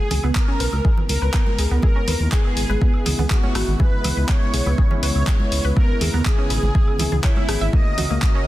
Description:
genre	progressive house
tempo	122 BPM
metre	4/4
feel	straight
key	C# dorian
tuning	A4 = 441 Hz
part	soft supersaw	melody	0.0-8.5 s	E4 to D#5	-27 LUFS	right 1 dB	sidechain pumping, dub echo
part	warm analog pad	sustained chords	0.0-8.5 s	C#3 to A#4	-29 LUFS	left 1 dB	chorus, sidechain pumping
part	analog pluck	arpeggios	0.1-8.5 s	A#3 to E5	-29 LUFS	equal	chorus, sidechain pumping, dub echo
part	dark detuned saw bass	bass	0.1-8.2 s	G#1 to D#2	-21 LUFS	equal	sidechain pumping
part	deep house drum kit	drums	0.1-8.3 s	handclaps, hi-hat, rim click	-28 LUFS	equal	none
part	congas and woodblock	percussion	0.1-8.4 s	none	-31 LUFS	right 2 dB	sidechain pumping on perc
part	electronic kick drum	drums	0.4-8.3 s	none	-18 LUFS	equal	none
room	little or no reverb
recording	dense, heavily limited modern master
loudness	-17 LUFS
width	side -15 dB against mid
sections	0.0-8.5 A section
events	filter sweep on synth pluck 0.0-8.5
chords	0.0 C#m7; 7.7 D#m7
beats	0.36 0.85 1.34 | 1.83 2.32 2.81 3.31 | 3.80 4.29 4.78 5.27 | 5.77 6.26 6.75 7.24 | 7.73 8.22

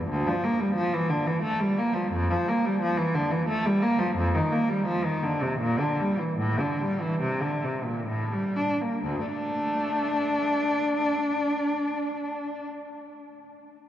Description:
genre	classical, baroque-style suite movement for unaccompanied cello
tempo	61-89 BPM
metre	3/4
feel	rubato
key	D minor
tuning	A4 = 440 Hz
part	rich cello	solo	0.0-12.6 s	D2 to D4	-24 LUFS	equal	none
room	wet cathedral reverb, RT60 5.6 s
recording	worn, warbling old tape, cassette tape, warbly pitch drift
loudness	-24 LUFS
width	side -11 dB against mid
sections	0.0-9.0 A section; 9.0-13.9 B section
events	slowing down 3.1-9.0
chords	0.1 Dm; 2.1 N.C.; 4.2 F5; 5.6 Bb; 6.4 D5/A; 8.1 Gmadd9/A; 9.0 D5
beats	| 0.09 0.76 1.44 | 2.13 2.81 3.48 | 4.17 4.88 5.61 | 6.39 7.21 8.08 | 9.04 10.00 10.96 | 11.94

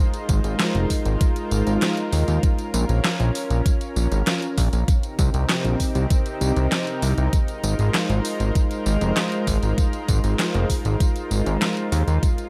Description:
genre	synthwave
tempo	98 BPM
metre	4/4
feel	straight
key	Ab major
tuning	A4 = 442 Hz
part	lush unison pad	sustained chords	0.0-12.5 s	C3 to C5	-29 LUFS	equal	chorus, sidechain pumping, shimmer reverb
part	pop drum kit	drums	0.1-12.5 s	handclaps, hi-hat, snare drum, tambourine	-29 LUFS	equal	overdrive
part	fat analog bass	bass	0.3-12.2 s	F1 to Eb2	-23 LUFS	equal	none
part	electronic kick drum	drums	0.3-12.4 s	none	-23 LUFS	equal	overdrive
room	light reverb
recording	none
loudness	-22 LUFS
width	mono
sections	0.0-12.5 A section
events	none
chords	0.0 Ab6; 2.4 Bbm; 4.9 Cm7; 7.3 Ab6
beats	0.60 1.21 1.82 | 2.43 3.04 3.66 4.27 | 4.88 5.49 6.11 6.72 | 7.33 7.94 8.55 9.17 | 9.78 10.39 11.00 11.62 | 12.23

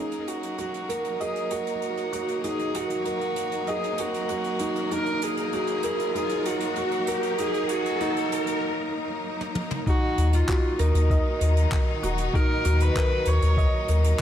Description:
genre	piano and strings electronica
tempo	97 BPM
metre	4/4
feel	straight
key	Eb minor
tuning	A4 = 441 Hz
part	dark viola	melody	0.0-13.9 s	Eb4 to Db5	-30 LUFS	left 1 dB	none
part	bright studio string section	sustained chords	0.0-14.2 s	Bb2 to Bb4	-33 LUFS	left 1 dB	sidechain pumping
part	felt-muted upright piano	riff	0.0-14.2 s	Eb4 to Eb5	-28 LUFS	right 3 dB	tape echo
part	riser	sound effects	2.3-8.6 s	none	-35 LUFS	left 1 dB	none
part	jazz brush drum kit	drums	0.1-14.2 s	handclaps, hi-hat, toms	-36 LUFS	right 1 dB	none
part	electronic kick drum	drums	9.9-14.2 s	none	-23 LUFS	left 1 dB	none
part	round analog bass	bass	10.2-14.1 s	Eb1 to Eb2	-21 LUFS	left 1 dB	sidechain pumping
room	light reverb, studio ambience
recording	none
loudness	-23 LUFS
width	side -10 dB against mid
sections	0.0-9.9 A section; 9.9-14.2 B section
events	build-up 0.0-9.9; riser 2.3-8.6; break 8.6-9.9; drum fill 9.4-9.9; drop 9.9-14.2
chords	0.0 Ebm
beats	0.58 1.20 1.82 | 2.44 3.06 3.68 4.29 | 4.91 5.53 6.15 6.77 | 7.39 8.01 8.62 9.24 | 9.86 10.48 11.10 11.72 | 12.34 12.95 13.57 14.19

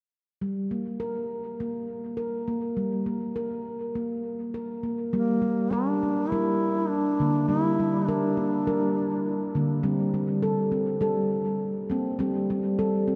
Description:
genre	world meditative, meditative tuned percussion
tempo	102 BPM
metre	4/4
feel	swing 55% on 16ths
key	G dorian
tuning	A4 = 440 Hz
part	handpan	arpeggios	0.4-13.2 s	D3 to Bb4	-28 LUFS	equal	diffuse ambient delay
part	dark duduk	melody	5.1-9.5 s	Bb3 to E4	-30 LUFS	equal	diffuse ambient delay
room	wet cathedral reverb, RT60 7.0 s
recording	in a vast, echoing space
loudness	-27 LUFS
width	mono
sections	0.4-5.1 A section; 5.1-13.2 B section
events	none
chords	0.4 Gm; 9.8 Gsus4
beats	| 0.42 1.01 1.60 2.19 | 2.78 3.37 3.96 4.55 | 5.14 5.73 6.32 6.91 | 7.50 8.08 8.67 9.26 | 9.85 10.44 11.03 11.61 | 12.20 12.79

